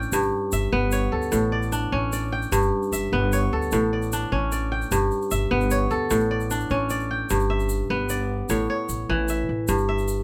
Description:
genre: west african traditional, West African string and xylophone music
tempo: 100 BPM (dotted quarters)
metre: 12/8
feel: straight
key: G lydian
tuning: A4 = 441 Hz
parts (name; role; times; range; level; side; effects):
- kora; arpeggios; 0.0-10.2 s; G2 to G5; -26 LUFS; equal; none
- upright bass; bass; 0.0-10.2 s; G1 to D2; -29 LUFS; equal; none
- egg shaker; percussion; 0.0-10.2 s; none; -38 LUFS; equal; none
room: little or no reverb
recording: close, detailed microphones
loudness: -24 LUFS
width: mono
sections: 0.0-7.3 A section; 7.3-10.2 B section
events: none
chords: 0.1 G; 1.3 A; 2.5 G; 3.7 A; 4.9 G; 6.1 A; 7.3 G; 8.5 A; 9.7 N.C.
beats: | 0.12 0.72 1.32 1.92 | 2.52 3.12 3.72 4.32 | 4.92 5.51 6.11 6.71 | 7.30 7.90 8.50 9.09 | 9.69

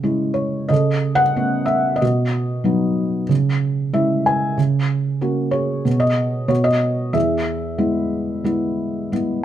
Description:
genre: classical, lyrical solo piano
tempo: 93 BPM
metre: 4/4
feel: rubato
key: E major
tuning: A4 = 439 Hz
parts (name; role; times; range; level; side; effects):
- felt-muted upright piano; solo; 0.0-9.4 s; E2 to G#5; -17 LUFS; right 1 dB; none
room: light reverb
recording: none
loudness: -17 LUFS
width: side -11 dB against mid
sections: 0.0-9.4 A section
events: felt piano fill 3.6-4.6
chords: 0.0 C#m; 0.7 Aadd9/C#; 2.0 B; 3.3 C#m; 4.6 F#/C#; 5.9 B69; 6.5 B; 7.2 E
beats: 0.05 0.71 1.37 | 2.02 2.66 3.30 3.94 | 4.58 5.22 5.86 6.50 | 7.15 7.80 8.46 9.14

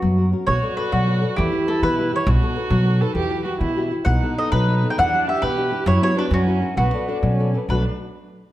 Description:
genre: italian folk, Italian serenade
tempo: 133 BPM (dotted quarters)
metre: 6/8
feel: rubato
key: B minor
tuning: A4 = 439 Hz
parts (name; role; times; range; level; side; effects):
- mandolin; melody; 0.0-7.8 s; F#4 to G5; -23 LUFS; equal; none
- nylon-string guitar; accompaniment; 0.0-7.8 s; B2 to D5; -23 LUFS; left 1 dB; none
- upright bass; bass; 0.0-7.8 s; B1 to E3; -21 LUFS; equal; none
- dark violin; second line; 0.5-7.8 s; B3 to A4; -26 LUFS; right 3 dB; none
room: wet recital hall reverb, RT60 1.5 s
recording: none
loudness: -18 LUFS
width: side -14 dB against mid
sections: 0.0-7.7 A section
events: none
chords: 0.0 F#; 0.5 Bm7; 1.4 Em; 2.3 B7; 3.2 Emadd9; 4.1 B7; 5.0 Em7; 5.9 Bm/F#; 6.3 F#7; 6.8 Bm7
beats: 0.01 | 0.46 0.92 | 1.37 1.82 | 2.27 2.71 | 3.16 3.60 | 4.06 4.51 | 4.96 5.41 | 5.86 6.30 | 6.76 7.21 | 7.68

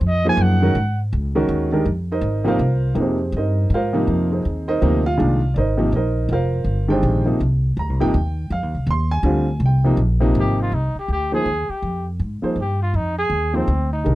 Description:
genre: modal jazz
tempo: 162 BPM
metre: 3/4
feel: swing 63% on 8ths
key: F dorian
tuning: A4 = 443 Hz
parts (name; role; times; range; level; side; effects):
- breathy trumpet; melody; 0.0-1.0, 10.4-14.2 s; C4 to Ab5; -23 LUFS; equal; none
- upright bass; bass; 0.0-14.2 s; F1 to Ab2; -20 LUFS; equal; none
- warm upright piano; accompaniment; 0.2-14.2 s; Bb2 to C6; -20 LUFS; right 1 dB; none
room: little or no reverb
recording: dry, close 1970s-style studio recording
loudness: -17 LUFS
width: side -16 dB against mid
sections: 0.0-1.9 A section; 1.9-10.7 A section; 10.7-14.2 B section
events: trumpet solo 0.0-1.9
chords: 0.0 Ab; 1.9 Fm11; 4.1 Abadd9; 6.3 Fm11; 8.5 Abadd9; 10.7 Fm11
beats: 0.02 0.39 | 0.75 1.12 1.49 | 1.86 2.23 2.60 | 2.96 3.33 3.70 | 4.07 4.44 4.81 | 5.18 5.55 5.92 | 6.29 6.66 7.03 | 7.39 7.76 8.13 | 8.50 8.87 9.24 | 9.61 9.98 10.35 | 10.72 11.09 11.46 | 11.83 12.20 12.57 | 12.94 13.31 13.68 | 14.05

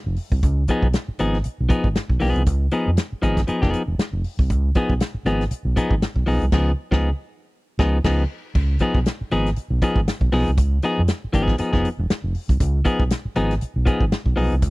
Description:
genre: funk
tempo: 118 BPM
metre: 4/4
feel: swing 56% on 16ths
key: Db mixolydian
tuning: A4 = 440 Hz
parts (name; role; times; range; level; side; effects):
- overdriven fingered electric bass; bass; 0.1-14.7 s; Fb1 to F2; -21 LUFS; equal; none
- warm soul drum kit; drums; 0.2-14.7 s; crash cymbal, hi-hat, kick drum, snare drum; -21 LUFS; equal; none
- clean electric guitar; accompaniment; 0.7-14.5 s; F3 to Ab4; -22 LUFS; left 2 dB; none
room: small room ambience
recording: none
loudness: -18 LUFS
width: side -21 dB against mid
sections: 0.0-8.6 A section; 8.6-14.7 B section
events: band accent 6.5-8.6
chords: 0.0 Db9; 8.6 Db9 (rootless)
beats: | 0.43 0.94 1.45 1.96 | 2.47 2.97 3.48 3.99 | 4.50 5.00 5.51 6.02 | 6.53 7.03 7.54 8.05 | 8.55 9.06 9.57 10.07 | 10.58 11.08 11.59 12.10 | 12.60 13.11 13.61 14.12 | 14.62

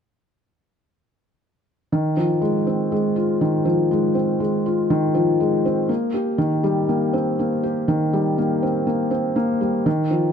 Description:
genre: electronica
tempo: 121 BPM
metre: 4/4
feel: straight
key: F minor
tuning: A4 = 440 Hz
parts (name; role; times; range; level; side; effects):
- felt-muted upright piano; solo; 1.9-10.3 s; Eb3 to G4; -18 LUFS; equal; tape echo
room: moderate echo chamber reverb, RT60 1.7 s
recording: none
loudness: -18 LUFS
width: side -7 dB against mid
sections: 1.9-10.3 A section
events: none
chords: none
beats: | 1.93 2.42 2.92 3.42 | 3.91 4.41 4.90 5.40 | 5.89 6.39 6.89 7.38 | 7.88 8.37 8.87 9.37 | 9.86

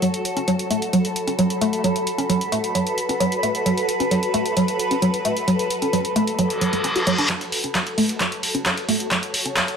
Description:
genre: driving peak-time techno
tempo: 132 BPM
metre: 4/4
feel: straight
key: F# minor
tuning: A4 = 439 Hz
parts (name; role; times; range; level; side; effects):
- woody wave-folded pluck; riff; 0.0-9.6 s; F#3 to F#4; -22 LUFS; right 1 dB; lush chorus, sidechain pumping, dub echo
- punchy analog drum machine; drums; 0.0-9.8 s; handclaps, hi-hat; -25 LUFS; equal; none
- granular cloud pad; texture; 0.0-9.8 s; F#4 to B5; -24 LUFS; equal; built-in reverb, sidechain pumping
- reverse cymbal; sound effects; 6.5-7.3 s; none; -22 LUFS; left 1 dB; none
- dusty soul sampler-style drum kit; drums; 7.3-9.7 s; hi-hat, ride cymbal, snare drum; -33 LUFS; right 2 dB; sidechain pumping on cymbals, high-pass filter on cymbals, high-pass filter on snare, sidechain pumping on hats, high-pass filter on hats
- electronic kick drum; drums; 7.3-9.7 s; none; -32 LUFS; equal; none
room: wet stone room reverb, RT60 1.1 s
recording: none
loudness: -19 LUFS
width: side -6 dB against mid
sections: 0.0-7.3 A section; 7.3-9.8 B section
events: filter sweep on synth arpeggio sound 0.0-7.3, 7.3-9.8; reverse cymbal 6.5-7.3; build-up 7.3-9.8; drum fill 7.3-9.8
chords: 0.0 F#m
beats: | 0.02 0.48 0.93 1.39 | 1.84 2.30 2.75 3.21 | 3.66 4.11 4.57 5.02 | 5.48 5.93 6.39 6.84 | 7.30 7.75 8.21 8.66 | 9.11 9.57

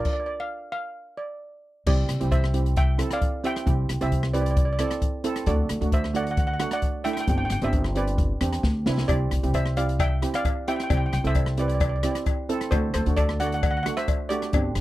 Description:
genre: calypso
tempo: 133 BPM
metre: 4/4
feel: straight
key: C major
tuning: A4 = 440 Hz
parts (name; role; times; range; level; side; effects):
- steel pan; melody; 0.0-14.8 s; G4 to G5; -29 LUFS; right 1 dB; none
- open jazz drum kit; drums; 0.0-14.8 s; crash cymbal, hi-hat, kick drum, rim click, snare drum; -26 LUFS; equal; none
- steel pan; accompaniment; 1.9-14.7 s; A3 to A4; -30 LUFS; right 4 dB; none
- upright bass; bass; 1.9-14.8 s; G1 to E2; -25 LUFS; equal; none
- cowbell; percussion; 9.1-14.6 s; none; -32 LUFS; left 11 dB; none
room: little or no reverb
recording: dry, close 1970s-style studio recording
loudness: -22 LUFS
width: side -16 dB against mid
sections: 0.0-1.9 A section; 1.9-14.8 B section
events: stop 0.1-1.9; drum fill 8.6-9.1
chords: 0.0 Bb (rootless); 1.9 Cadd9; 5.5 D; 7.3 Gsus4; 9.1 Cadd9; 12.7 D7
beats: | 0.06 0.51 0.96 1.41 | 1.86 2.31 2.77 3.22 | 3.67 4.12 4.57 5.02 | 5.47 5.92 6.38 6.83 | 7.28 7.73 8.18 8.64 | 9.09 9.54 9.99 10.45 | 10.90 11.35 11.81 12.26 | 12.71 13.17 13.62 14.07 | 14.53

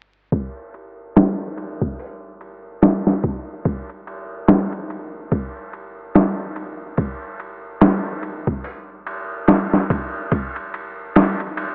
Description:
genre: trip hop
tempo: 72 BPM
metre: 4/4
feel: swing 58% on 16ths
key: none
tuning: none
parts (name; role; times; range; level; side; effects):
- boom bap sampler-style drum kit; drums; 0.3-11.7 s; hi-hat, kick drum, ride cymbal, snare drum; -18 LUFS; equal; none
room: wet spring reverb, RT60 2.7 s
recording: vinyl crackle, low-pass filter, AM radio sound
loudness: -18 LUFS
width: side -28 dB against mid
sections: 0.3-11.7 A section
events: filter sweep 0.3-11.7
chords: none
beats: | 0.32 1.16 1.99 2.82 | 3.66 4.49 5.32 6.16 | 6.99 7.82 8.66 9.49 | 10.32 11.16

